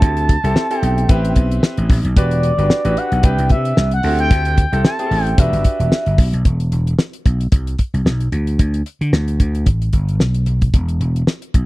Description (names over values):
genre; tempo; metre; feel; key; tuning
early-eighties boogie funk; 112 BPM; 4/4; swing 56% on 16ths; E minor; A4 = 440 Hz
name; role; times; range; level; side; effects
expressive synth lead; melody; 0.0-6.2 s; D5 to A5; -20 LUFS; equal; chorus, slapback echo
clear grand piano; accompaniment; 0.0-6.2 s; C4 to B4; -24 LUFS; equal; none
vintage slap bass; bass; 0.0-11.7 s; E1 to D3; -17 LUFS; equal; none
damped 70s drum kit; drums; 0.0-11.7 s; hi-hat, kick drum, snare drum; -14 LUFS; equal; none
room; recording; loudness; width
studio reverb; dry, close 1970s-style studio recording; -14 LUFS; side -19 dB against mid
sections
0.0-6.5 A section; 6.5-11.7 B section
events
none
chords
0.0 D9sus4; 1.1 Am9; 2.2 Em9; 3.2 Cmaj9; 4.0 D9sus4; 5.4 Em9; 6.5 E5; 7.5 N.C.; 9.7 Asus2; 10.7 E5